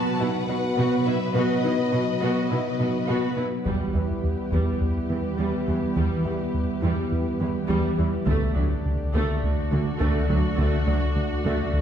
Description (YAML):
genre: cinematic, hybrid orchestral and electronic film score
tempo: 104 BPM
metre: 4/4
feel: straight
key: E minor from 3.7 s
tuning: A4 = 440 Hz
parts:
  - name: warm symphonic violin section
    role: melody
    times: 0.0-3.0 s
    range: D#5 to A5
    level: -32 LUFS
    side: left 7 dB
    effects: none
  - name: warm symphonic violin section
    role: second line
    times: 0.0-3.4 s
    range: B4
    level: -31 LUFS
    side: left 1 dB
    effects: none
  - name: rich symphonic viola section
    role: accompaniment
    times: 0.0-11.8 s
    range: D3 to G4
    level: -29 LUFS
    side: right 1 dB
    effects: none
  - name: warm analog pad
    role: sustained chords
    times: 0.0-11.8 s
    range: D3 to D5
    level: -28 LUFS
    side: equal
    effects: chorus
  - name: tight sequenced synth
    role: arpeggios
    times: 0.0-11.6 s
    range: D3 to B4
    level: -33 LUFS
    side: equal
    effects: none
  - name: rich symphonic cello section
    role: bass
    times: 0.2-11.5 s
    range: D2 to B2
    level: -29 LUFS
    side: right 1 dB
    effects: none
  - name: plucky analog bass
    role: riff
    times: 3.7-11.8 s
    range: D2 to E3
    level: -26 LUFS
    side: equal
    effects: none
  - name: taiko ensemble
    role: drums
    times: 3.7-4.8, 8.3-9.4 s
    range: none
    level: -32 LUFS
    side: left 1 dB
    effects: none
room: wet scoring stage reverb, RT60 1.5 s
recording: heard from further back in the room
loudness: -22 LUFS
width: side -9 dB against mid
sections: 0.0-3.7 A section; 3.7-11.8 B section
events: none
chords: 0.0 B; 3.7 Em; 8.3 D